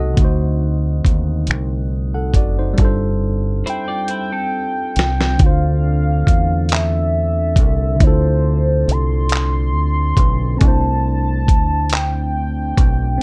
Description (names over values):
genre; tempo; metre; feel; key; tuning
slow six-eight R&B; 46 BPM (dotted quarters); 6/8; straight; unclear; A4 = 440 Hz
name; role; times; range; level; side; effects
tine electric piano; accompaniment; 0.0-13.2 s; B2 to F#5; -27 LUFS; equal; none
mellow tonewheel organ; sustained chords; 0.0-13.2 s; D3 to A4; -32 LUFS; equal; slow rotary speaker
deep dub fingered electric bass; bass; 0.0-13.2 s; F#1 to E2; -20 LUFS; equal; none
dusty soul sampler-style drum kit; drums; 0.2-13.0 s; finger snaps, handclaps, hi-hat, kick drum, snare drum; -17 LUFS; equal; vintage 12-bit sampler grit
warm velvety synth lead; melody; 3.7-13.2 s; C5 to C6; -25 LUFS; equal; chorus
clean electric guitar; second line; 3.7-5.4 s; C4 to D5; -31 LUFS; equal; lush chorus
room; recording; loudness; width
little or no reverb; dark, warm production; -17 LUFS; mono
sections
0.0-5.4 A section; 5.4-13.2 B section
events
drum fill 4.1-5.4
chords
0.2 D7b9; 2.8 G9sus4; 5.4 Dm9; 10.6 C6